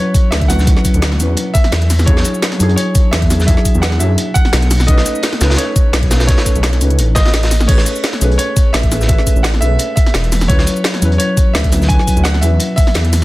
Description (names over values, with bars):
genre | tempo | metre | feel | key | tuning
liquid drum and bass | 171 BPM | 4/4 | swing 53% on 16ths | unclear | A4 = 440 Hz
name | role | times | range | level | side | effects
clear grand piano | melody | 0.0-13.2 s | C#5 to G#5 | -22 LUFS | right 1 dB | digital delay
felt-muted upright piano | accompaniment | 0.0-13.1 s | F#3 to B4 | -20 LUFS | left 1 dB | none
drum and bass drum kit | drums | 0.1-13.2 s | cabasa, crash cymbal, hi-hat, snare drum | -20 LUFS | equal | overdrive
electronic kick drum | drums | 0.1-12.9 s | none | -12 LUFS | equal | overdrive
crunchy breakbeat drum kit | drums | 0.2-13.2 s | hi-hat, snare drum | -24 LUFS | equal | high-pass filter on hats, high-pass filter on snare, high-pass filter on room
dark detuned saw bass | bass | 0.3-13.2 s | E1 to F#2 | -14 LUFS | equal | none
room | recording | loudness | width
studio ambience | dense, heavily limited modern master | -11 LUFS | side -18 dB against mid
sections
0.0-13.2 A section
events
none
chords
0.0 Dmaj13; 1.9 E9; 4.7 B9; 7.7 Amaj9; 10.5 Dmaj13